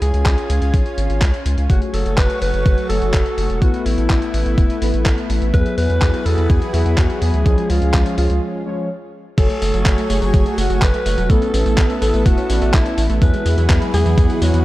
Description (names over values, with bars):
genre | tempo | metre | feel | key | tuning
italo disco | 125 BPM | 4/4 | straight | F# minor | A4 = 440 Hz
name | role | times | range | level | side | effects
raspy alto saxophone | melody | 0.0-14.6 s | E4 to B4 | -24 LUFS | equal | tape echo
lush unison pad | sustained chords | 0.0-14.6 s | E3 to G#5 | -26 LUFS | right 1 dB | chorus
round analog bass | bass | 0.0-14.6 s | E1 to E2 | -18 LUFS | equal | none
dusty soul sampler-style drum kit | drums | 0.0-14.6 s | crash cymbal, handclaps, hi-hat, tambourine | -26 LUFS | equal | overdrive
electronic kick drum | drums | 0.3-14.3 s | none | -16 LUFS | equal | none
analog synth brass | stabs | 1.7-14.6 s | E#3 to G#5 | -24 LUFS | left 2 dB | chorus
analog pluck | arpeggios | 9.4-14.6 s | E3 to C#4 | -26 LUFS | right 3 dB | chorus, tape echo
room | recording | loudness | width
digital ambience | dark, warm production | -14 LUFS | side -17 dB against mid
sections
0.0-9.4 A section; 9.4-14.6 B section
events
break 8.4-9.4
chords
0.0 C#; 1.7 F#madd9; 3.6 Asus2; 5.5 Eadd9; 7.5 C#; 9.4 F#madd9; 11.3 Asus2; 13.2 Eadd9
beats
0.26 0.74 1.22 | 1.70 2.18 2.66 3.14 | 3.62 4.10 4.58 5.06 | 5.54 6.02 6.50 6.98 | 7.46 7.94 8.42 8.90 | 9.38 9.86 10.34 10.82 | 11.30 11.78 12.26 12.74 | 13.22 13.70 14.18